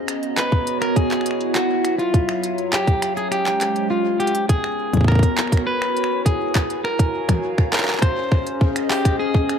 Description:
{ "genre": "IDM", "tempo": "102 BPM", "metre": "4/4", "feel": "straight", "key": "B major", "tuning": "A4 = 441 Hz", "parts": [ { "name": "warbly tape-like pad", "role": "sustained chords", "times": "0.0-9.6 s", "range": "F#3 to A#5", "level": "-24 LUFS", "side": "right 1 dB", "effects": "chorus, built-in reverb" }, { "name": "industrial drum kit", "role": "drums", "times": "0.1-9.6 s", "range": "finger snaps, handclaps, hi-hat, toms", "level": "-26 LUFS", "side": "left 1 dB", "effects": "ping-pong delay" }, { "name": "electric guitar at the edge of break-up", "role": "melody", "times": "0.4-9.6 s", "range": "E#4 to B#4", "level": "-23 LUFS", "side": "left 1 dB", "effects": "vintage 12-bit sampler grit, tape echo" }, { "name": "electronic kick drum", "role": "drums", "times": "0.5-9.5 s", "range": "none", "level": "-18 LUFS", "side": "equal", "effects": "overdrive" } ], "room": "moderate lush hall reverb, RT60 1.6 s, digital ambience", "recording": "dark, warm production", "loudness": "-17 LUFS", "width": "side -7 dB against mid", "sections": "0.0-4.5 A section; 4.5-9.6 B section", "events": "drum fill 4.2", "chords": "0.0 Bmaj9; 1.0 Emaj9; 1.8 F#maj7; 3.0 C#maj9; 4.5 Bsus2; 5.7 Eadd9; 6.6 F#maj9; 7.7 C#maj9" }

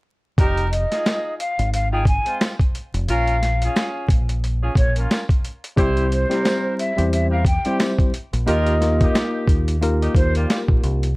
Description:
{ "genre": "hip hop, boom-bap hip-hop", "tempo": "89 BPM", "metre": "4/4", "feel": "swing 57% on 16ths", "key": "F minor", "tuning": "A4 = 440 Hz", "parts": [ { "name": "warm horn section", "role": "stabs", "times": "0.4-10.6 s", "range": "G3 to C5", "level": "-27 LUFS", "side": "right 1 dB", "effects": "high-pass filter, low-pass filter, digital delay" }, { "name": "deep dub fingered electric bass", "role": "bass", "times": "0.4-11.1 s", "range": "F1 to E2", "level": "-20 LUFS", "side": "equal", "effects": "transformer saturation" }, { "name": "boom bap sampler-style drum kit", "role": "drums", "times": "0.4-11.2 s", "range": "hi-hat, kick drum, snare drum", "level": "-19 LUFS", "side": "equal", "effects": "none" }, { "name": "breathy hollow jazz flute", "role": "melody", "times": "0.7-10.3 s", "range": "C5 to Ab5", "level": "-24 LUFS", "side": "equal", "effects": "high-pass filter, low-pass filter" }, { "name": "tambourine", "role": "percussion", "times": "1.1-10.7 s", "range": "none", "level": "-42 LUFS", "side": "right 2 dB", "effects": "none" }, { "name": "mellow tine electric piano", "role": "accompaniment", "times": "5.8-11.1 s", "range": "G3 to C5", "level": "-23 LUFS", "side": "left 1 dB", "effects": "medium stereo tremolo, cassette tape, high-pass filter, low-pass filter" } ], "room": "light reverb", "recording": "worn, warbling old tape, cassette tape, vinyl crackle, warbly pitch drift", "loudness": "-17 LUFS", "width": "side -23 dB against mid", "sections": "0.4-11.2 A section", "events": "none", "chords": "0.4 Fm7; 3.1 Bbm; 5.8 C; 8.5 Ebadd9" }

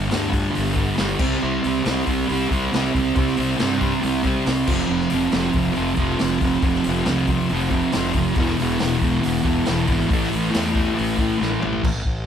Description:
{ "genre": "garage rock duo or trio", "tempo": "138 BPM", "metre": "4/4", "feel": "straight", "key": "A minor", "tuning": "A4 = 441 Hz", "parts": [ { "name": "fuzz guitar", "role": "riff", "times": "0.0-11.8 s", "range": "E2 to C4", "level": "-20 LUFS", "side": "right 1 dB", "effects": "distortion" }, { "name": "fuzz fingered electric bass", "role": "bass", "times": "0.0-12.3 s", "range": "E1 to G2", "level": "-27 LUFS", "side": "equal", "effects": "overdrive" }, { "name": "vintage drum kit", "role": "drums", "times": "0.1-12.2 s", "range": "crash cymbal, hi-hat, kick drum, snare drum, toms", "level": "-25 LUFS", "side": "left 1 dB", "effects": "none" } ], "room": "light reverb", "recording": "band playing live in one room", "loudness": "-18 LUFS", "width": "side -8 dB against mid", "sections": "0.0-11.8 A section", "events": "drum fill 11.4-11.8", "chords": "0.0 G5; 1.2 C5; 4.7 F5; 8.4 E5; 10.1 A5" }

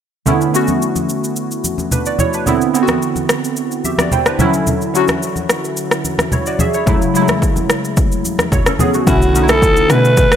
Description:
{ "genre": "amapiano", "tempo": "109 BPM", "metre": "4/4", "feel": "straight", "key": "B minor", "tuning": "A4 = 441 Hz", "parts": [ { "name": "glassy digital keys", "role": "accompaniment", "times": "0.3-10.4 s", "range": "C#3 to G5", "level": "-16 LUFS", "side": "right 1 dB", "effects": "chorus" }, { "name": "deep house drum kit", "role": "drums", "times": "0.3-10.4 s", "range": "kick drum, rim click, shaker", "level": "-17 LUFS", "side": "equal", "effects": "overdrive" }, { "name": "congas", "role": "percussion", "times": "0.3-8.9 s", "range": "none", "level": "-20 LUFS", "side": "left 1 dB", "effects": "none" }, { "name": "breathy alto saxophone", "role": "melody", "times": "9.1-10.4 s", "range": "F#4 to B4", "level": "-13 LUFS", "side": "equal", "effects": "none" }, { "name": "deep log drum bass", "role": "bass", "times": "9.1-10.3 s", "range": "B1 to B2", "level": "-16 LUFS", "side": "equal", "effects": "none" } ], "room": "light reverb", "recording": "none", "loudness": "-13 LUFS", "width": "side -9 dB against mid", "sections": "0.3-9.1 A section; 9.1-10.4 B section", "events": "synth keys fill 3.8-4.7; drop 9.1-10.4", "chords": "0.3 Bm11; 2.5 Cmaj9; 4.4 Dmaj9; 6.9 F#m7; 9.1 Bm11" }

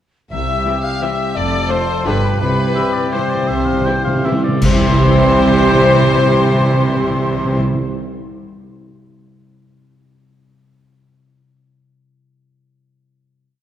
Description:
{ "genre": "classical, orchestral ballroom waltz", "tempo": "152-188 BPM", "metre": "3/4", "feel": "rubato", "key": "C major", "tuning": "A4 = 443 Hz", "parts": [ { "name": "clear chamber violin section", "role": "melody", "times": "0.3-7.6 s", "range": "B4 to F5", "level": "-22 LUFS", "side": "left 4 dB", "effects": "none" }, { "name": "bright small flute group", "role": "second line", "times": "0.3-7.6 s", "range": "B5 to F6", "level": "-23 LUFS", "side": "left 1 dB", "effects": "none" }, { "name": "warm clarinet", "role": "second line", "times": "0.3-7.6 s", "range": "B4 to F5", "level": "-25 LUFS", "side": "left 2 dB", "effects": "none" }, { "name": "mellow French horn section", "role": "sustained chords", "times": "0.3-7.6 s", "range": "F3 to F4", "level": "-25 LUFS", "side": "left 1 dB", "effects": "none" }, { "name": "concert harp", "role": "arpeggios", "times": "0.3-8.5 s", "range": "F2 to E5", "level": "-27 LUFS", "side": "left 5 dB", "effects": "none" }, { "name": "warm trumpet", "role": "stabs", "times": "0.3-7.6 s", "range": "G4 to A4", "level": "-23 LUFS", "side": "right 1 dB", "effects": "none" }, { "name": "clear chamber cello section", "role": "bass", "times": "0.3-7.6 s", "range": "C2 to C3", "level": "-21 LUFS", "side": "right 1 dB", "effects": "none" }, { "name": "rich chamber double bass section", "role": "bass", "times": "0.3-7.6 s", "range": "F1 to C2", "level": "-22 LUFS", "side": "right 3 dB", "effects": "none" }, { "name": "timpani", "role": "percussion", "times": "0.3-7.9 s", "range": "C3", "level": "-20 LUFS", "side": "right 2 dB", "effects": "none" }, { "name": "clear studio violin section", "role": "second line", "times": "0.7-7.6 s", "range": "C4 to G4", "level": "-28 LUFS", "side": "left 2 dB", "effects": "none" }, { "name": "clear studio viola section", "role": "accompaniment", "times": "0.7-7.6 s", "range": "D3 to A3", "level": "-24 LUFS", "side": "right 1 dB", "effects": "none" }, { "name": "cymbal swell, clash cymbals and concert bass drum", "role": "percussion", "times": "2.4-5.3 s", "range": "none", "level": "-23 LUFS", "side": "equal", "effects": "none" }, { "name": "clear oboe", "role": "second line", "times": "2.8-4.6 s", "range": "C5 to G5", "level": "-25 LUFS", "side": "equal", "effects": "none" } ], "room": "wet concert hall reverb, RT60 2.0 s", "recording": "dark, warm production", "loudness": "-13 LUFS", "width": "side -11 dB against mid", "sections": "0.3-4.6 A section; 4.6-6.8 final chord", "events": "slowing down 1.9-4.6; timpani fill 2.4-4.6; band accent 4.6-5.0", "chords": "0.3 C; 1.4 Dm/F; 2.1 G7; 2.4 C" }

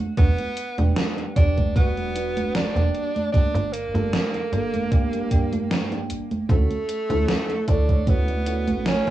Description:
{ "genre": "vaporwave", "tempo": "76 BPM", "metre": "4/4", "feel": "swing 54% on 16ths", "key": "unclear", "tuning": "A4 = 440 Hz", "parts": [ { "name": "gated 80s digital drum machine", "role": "drums", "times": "0.0-9.1 s", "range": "congas, hi-hat, snare drum", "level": "-27 LUFS", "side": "right 2 dB", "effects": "gated reverb, gated reverb snare, vintage 12-bit sampler grit, cassette tape" }, { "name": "bright tenor saxophone", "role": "melody", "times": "0.2-9.1 s", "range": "A3 to D4", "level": "-27 LUFS", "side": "right 2 dB", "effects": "plate reverb, tape echo" }, { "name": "FM electric piano with soft pad layer", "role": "accompaniment", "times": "0.2-9.1 s", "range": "G3 to C#5", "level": "-29 LUFS", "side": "right 1 dB", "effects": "lush chorus, cassette tape, plate reverb, tape echo" }, { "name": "slap-like FM bass", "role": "bass", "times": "0.2-9.1 s", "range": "D1 to G2", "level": "-24 LUFS", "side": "right 1 dB", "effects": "tube saturation" }, { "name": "electronic kick drum", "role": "drums", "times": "0.2-8.2 s", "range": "none", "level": "-19 LUFS", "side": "right 1 dB", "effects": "vintage 12-bit sampler grit, cassette tape" } ], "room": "moderate booth ambience, RT60 0.2 s", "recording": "home recording on cassette, small room ambience", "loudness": "-20 LUFS", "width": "side -14 dB against mid", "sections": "0.0-9.1 A section", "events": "none", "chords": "0.0 Em7; 2.9 Gm; 6.5 Dmaj7" }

